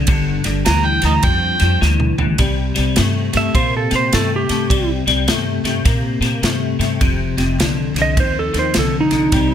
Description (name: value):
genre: electric blues shuffle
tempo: 104 BPM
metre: 4/4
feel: swing 64% on 8ths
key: unclear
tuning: A4 = 440 Hz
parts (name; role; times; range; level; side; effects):
- clean electric guitar; riff; 0.0-9.5 s; F2 to Bb3; -19 LUFS; left 4 dB; analog chorus
- upright bass; bass; 0.0-9.5 s; F1 to Bb2; -20 LUFS; equal; none
- natural country drum kit; drums; 0.1-9.5 s; kick drum, ride cymbal, snare drum, toms; -20 LUFS; right 1 dB; none
- overdriven harmonica; second line; 0.7-1.8 s; Eb5 to Bb5; -18 LUFS; right 4 dB; none
- clean lap steel guitar; melody; 3.4-9.5 s; Eb4 to E5; -18 LUFS; right 4 dB; plate reverb
room: light reverb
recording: none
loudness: -14 LUFS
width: side -9 dB against mid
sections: 0.0-2.4 A section; 2.4-9.5 B section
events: harmonica solo 0.0-2.4; drum fill 1.8-2.4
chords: 0.1 G5; 2.4 C5; 7.0 F5